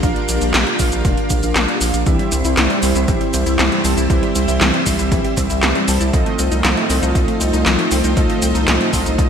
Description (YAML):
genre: synthwave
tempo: 118 BPM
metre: 4/4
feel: straight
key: unclear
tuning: A4 = 444 Hz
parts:
  - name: string machine, full ensemble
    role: sustained chords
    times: 0.0-9.3 s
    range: G3 to D5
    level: -21 LUFS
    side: equal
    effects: ensemble chorus, sidechain pumping
  - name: mellow synth brass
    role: stabs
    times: 0.0-9.3 s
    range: C4 to A5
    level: -23 LUFS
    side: right 2 dB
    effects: chorus, ping-pong delay
  - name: round analog bass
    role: bass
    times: 0.0-9.3 s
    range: F1 to C2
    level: -20 LUFS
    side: equal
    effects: none
  - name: 80s electronic pad drums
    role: drums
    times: 0.0-9.3 s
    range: handclaps, hi-hat, shaker, snare drum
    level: -19 LUFS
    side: equal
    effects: none
  - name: electronic kick drum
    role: drums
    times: 0.0-9.3 s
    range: none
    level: -19 LUFS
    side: equal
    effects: none
  - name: analog pluck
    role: arpeggios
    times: 2.1-9.3 s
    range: E3 to E4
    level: -24 LUFS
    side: left 3 dB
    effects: chorus, phaser, ping-pong delay
room: moderate lush hall reverb, RT60 1.7 s, digital ambience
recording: bright 1980s-style digital production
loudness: -14 LUFS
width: side -7 dB against mid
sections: 0.0-9.3 A section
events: none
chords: 0.0 Bb; 2.1 C; 6.1 F7/C